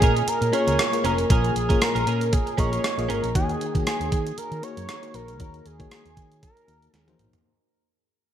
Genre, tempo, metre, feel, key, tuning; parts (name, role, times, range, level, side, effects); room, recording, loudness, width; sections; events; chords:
1980s-style pop; 117 BPM; 4/4; swing 55% on 16ths; A4 = 439 Hz
octave-doubled lead; melody; 0.0-7.2 s; Ab4 to Db5; -27 LUFS; right 1 dB; chorus
FM electric piano with tremolo; accompaniment; 0.0-7.5 s; Bb2 to Eb5; -30 LUFS; left 5 dB
direct-recorded clean electric guitar; riff; 0.0-3.3 s; Db4 to Bb4; -30 LUFS; right 6 dB; analog chorus
mellow fretless electric bass; bass; 0.0-7.3 s; F1 to Eb3; -28 LUFS; right 1 dB
clean 12-bit digital drum machine; drums; 0.0-7.4 s; hi-hat, kick drum, rim click, snare drum, toms; -25 LUFS; right 1 dB
moderate plate reverb, RT60 2.3 s; bright 1980s-style digital production; -21 LUFS; side -10 dB against mid
0.0-7.5 A section
fade-out 0.0-7.5; drum fill 6.9-7.5
0.0 Bbm7; 3.4 Ebm7